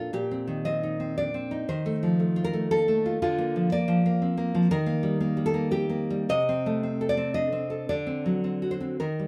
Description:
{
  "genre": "romantic piece for solo classical guitar",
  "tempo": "98-124 BPM",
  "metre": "3/4",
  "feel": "rubato",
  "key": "Bb major",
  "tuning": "A4 = 440 Hz",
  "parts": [
    { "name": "nylon-string guitar", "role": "solo", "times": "0.0-9.3 s", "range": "Bb2 to Eb5", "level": "-27 LUFS", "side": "equal", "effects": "none" }
  ],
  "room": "moderate studio reverb, RT60 0.8 s",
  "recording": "band playing live in one room",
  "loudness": "-27 LUFS",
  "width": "mono",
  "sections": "0.0-9.3 A section",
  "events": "none",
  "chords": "0.1 Cm/Bb; 1.7 F7/Eb; 3.2 Bb/D; 4.7 Eb; 6.3 Adim/C; 7.9 D7",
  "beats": "| 0.14 0.66 1.18 | 1.68 2.20 2.71 | 3.21 3.70 4.20 | 4.69 5.19 5.71 | 6.29 6.82 7.35 | 7.89 8.44 9.00"
}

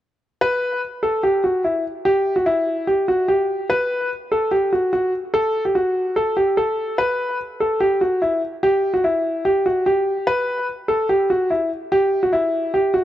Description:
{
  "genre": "hip hop",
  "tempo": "146 BPM",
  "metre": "4/4",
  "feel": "half-time",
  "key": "unclear",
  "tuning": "A4 = 439 Hz",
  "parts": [
    { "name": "warm concert grand piano", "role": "melody", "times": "0.4-13.0 s", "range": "E4 to B4", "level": "-17 LUFS", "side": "equal", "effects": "low-pass filter" }
  ],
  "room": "light reverb",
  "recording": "dry, gritty hardware recording",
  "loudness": "-18 LUFS",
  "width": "side -13 dB against mid",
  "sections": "0.4-13.0 A section",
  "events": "none",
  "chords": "none",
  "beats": "| 0.41 0.82 1.23 1.64 | 2.05 2.46 2.88 3.29 | 3.70 4.11 4.52 4.93 | 5.34 5.75 6.16 6.57 | 6.98 7.39 7.81 8.22 | 8.63 9.04 9.45 9.86 | 10.27 10.68 11.09 11.51 | 11.92 12.33 12.74"
}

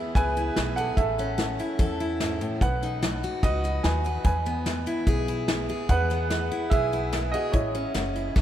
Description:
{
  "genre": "honky-tonk and classic country",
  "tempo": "146 BPM",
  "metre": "4/4",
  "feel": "straight",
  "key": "unclear",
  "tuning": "A4 = 440 Hz",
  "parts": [
    { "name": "warm upright piano", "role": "second line", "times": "0.0-8.4 s", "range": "E4 to G#5", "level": "-29 LUFS", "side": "right 2 dB", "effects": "none" },
    { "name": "picked steel-string acoustic guitar", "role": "accompaniment", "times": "0.0-8.4 s", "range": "G#2 to B4", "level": "-30 LUFS", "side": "left 1 dB", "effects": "none" },
    { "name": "upright bass", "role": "bass", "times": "0.2-8.4 s", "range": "F#1 to E2", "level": "-30 LUFS", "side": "equal", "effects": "none" },
    { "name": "soft brush drum kit", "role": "drums", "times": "0.2-8.4 s", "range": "hi-hat, kick drum, snare drum", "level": "-28 LUFS", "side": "equal", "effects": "none" }
  ],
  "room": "moderate cathedral reverb, RT60 6.0 s",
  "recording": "in a vast, echoing space",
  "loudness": "-23 LUFS",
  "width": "side -11 dB against mid",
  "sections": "0.0-8.4 A section",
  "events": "upright piano solo 0.0-8.4",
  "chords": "0.0 E; 1.0 A; 2.6 B; 4.3 E; 7.5 A",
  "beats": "0.16 0.57 | 0.97 1.38 1.79 2.20 | 2.61 3.02 3.43 3.84 | 4.25 4.66 5.07 5.48 | 5.89 6.30 6.71 7.12 | 7.54 7.95 8.36"
}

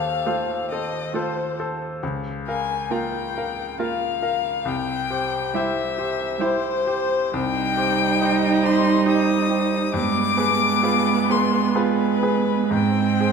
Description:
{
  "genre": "classical, slow romantic movement for piano quartet",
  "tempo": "60-71 BPM",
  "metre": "3/4",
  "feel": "rubato",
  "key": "C minor from 7.3 s",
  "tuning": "A4 = 440 Hz",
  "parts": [
    { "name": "rich violin", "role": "melody", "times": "0.0-13.3 s", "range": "B4 to Eb6", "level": "-24 LUFS", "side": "left 8 dB", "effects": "none" },
    { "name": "bright grand piano", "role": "accompaniment", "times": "0.0-13.3 s", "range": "C2 to F5", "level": "-25 LUFS", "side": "left 1 dB", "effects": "none" },
    { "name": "warm cello", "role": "second line", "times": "0.3-13.3 s", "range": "G3 to Bb3", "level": "-25 LUFS", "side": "right 10 dB", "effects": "none" },
    { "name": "rich viola", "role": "accompaniment", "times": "0.3-13.3 s", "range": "B3 to F4", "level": "-24 LUFS", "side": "right 4 dB", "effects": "none" }
  ],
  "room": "wet recital hall reverb, RT60 1.8 s",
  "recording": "none",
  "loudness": "-19 LUFS",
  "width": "side -6 dB against mid",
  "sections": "0.0-13.3 A section",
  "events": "none",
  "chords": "0.0 F7/Eb; 2.0 Bbm/Db; 4.7 C; 7.3 Cm; 9.9 G7b9; 12.7 Abmaj7",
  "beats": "0.26 1.14 | 2.02 2.91 3.79 | 4.66 5.54 6.40 | 7.33 8.21 9.07 | 9.94 10.84 11.75 | 12.72"
}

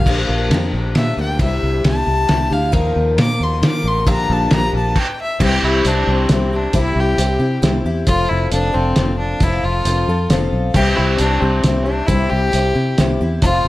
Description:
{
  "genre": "folk rock and heartland rock",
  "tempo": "135 BPM",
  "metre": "3/4",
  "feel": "straight",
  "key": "C mixolydian",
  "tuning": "A4 = 441 Hz",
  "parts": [
    { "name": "rich fiddle", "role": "melody", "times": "0.0-13.7 s", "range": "C4 to D6", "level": "-21 LUFS", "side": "left 1 dB", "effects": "slapback echo" },
    { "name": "picked twelve-string acoustic guitar", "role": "accompaniment", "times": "0.0-13.7 s", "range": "Bb2 to Bb4", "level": "-21 LUFS", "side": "left 3 dB", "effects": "none" },
    { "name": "fingered electric bass", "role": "bass", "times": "0.0-13.7 s", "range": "F1 to Eb3", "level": "-19 LUFS", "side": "equal", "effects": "none" },
    { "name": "cloth-damped thuddy drum kit", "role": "drums", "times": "0.1-13.5 s", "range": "crash cymbal, hi-hat, kick drum, ride cymbal, snare drum", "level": "-19 LUFS", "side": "equal", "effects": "none" }
  ],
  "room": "light reverb",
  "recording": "dark, warm production",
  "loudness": "-14 LUFS",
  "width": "side -17 dB against mid",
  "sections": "0.0-5.4 A section; 5.4-13.7 B section",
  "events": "fiddle solo 0.0-5.4; stop 5.0-5.4",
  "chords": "0.0 Bb6; 1.4 Cadd9; 2.7 Ebsus2; 4.1 Bb6; 5.4 C; 8.1 F; 10.8 C",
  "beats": "| 0.06 0.51 0.95 | 1.40 1.84 2.29 | 2.74 3.18 3.63 | 4.07 4.52 4.96 | 5.41 5.85 6.30 | 6.74 7.19 7.63 | 8.08 8.53 8.97 | 9.42 9.86 10.31 | 10.75 11.20 11.65 | 12.09 12.54 12.98 | 13.43"
}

